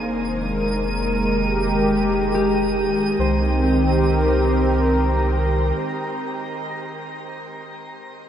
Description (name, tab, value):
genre	ambient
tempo	70 BPM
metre	4/4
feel	straight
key	C minor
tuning	A4 = 440 Hz
part	warm analog pad	sustained chords	0.0-6.5 s	Eb3 to C5	-20 LUFS	equal	chorus
part	concert harp	arpeggios	0.0-6.2 s	C4 to C5	-31 LUFS	left 2 dB	none
part	warm sub bass	bass	0.0-5.7 s	F1 to C2	-23 LUFS	equal	none
part	twinkling granular texture	texture	0.0-3.2 s	Eb7	-34 LUFS	right 2 dB	built-in reverb
room	wet shimmer reverb, RT60 8.5 s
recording	dark, warm production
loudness	-18 LUFS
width	side -10 dB against mid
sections	0.0-3.2 A section; 3.2-6.6 B section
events	none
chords	0.0 Fm11; 3.2 Cm7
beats	0.62 1.48 2.34 | 3.19 4.05 4.91 5.77